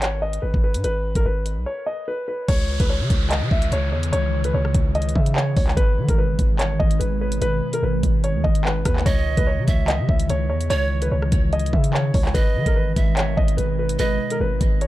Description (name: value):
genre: hip hop, drill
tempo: 146 BPM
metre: 4/4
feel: half-time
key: unclear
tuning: A4 = 440 Hz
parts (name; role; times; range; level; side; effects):
- warm concert grand piano; melody; 0.0-14.9 s; A#4 to E5; -26 LUFS; left 1 dB; low-pass filter, tape echo
- long sustained 808-style bass; bass; 0.0-14.9 s; G#1 to D#3; -23 LUFS; equal; none
- drill drum kit; drums; 0.0-14.9 s; crash cymbal, handclaps, hi-hat, kick drum, rim click; -21 LUFS; equal; none
- glassy FM pad; sustained chords; 2.7-14.9 s; B2 to G#3; -28 LUFS; equal; ensemble chorus, built-in reverb
- downlifter; sound effects; 2.5-5.8 s; none; -33 LUFS; right 1 dB; none
- bright polished pan flute; second line; 9.1-14.4 s; C#5 to E5; -30 LUFS; right 6 dB; tape echo
room: digital ambience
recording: dark, warm production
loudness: -18 LUFS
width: side -15 dB against mid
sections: 0.0-2.5 A section; 2.5-14.9 B section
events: break 1.7-2.5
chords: 0.0 G#m; 2.5 C#madd9; 5.8 G#m; 9.1 C#madd9; 12.3 G#m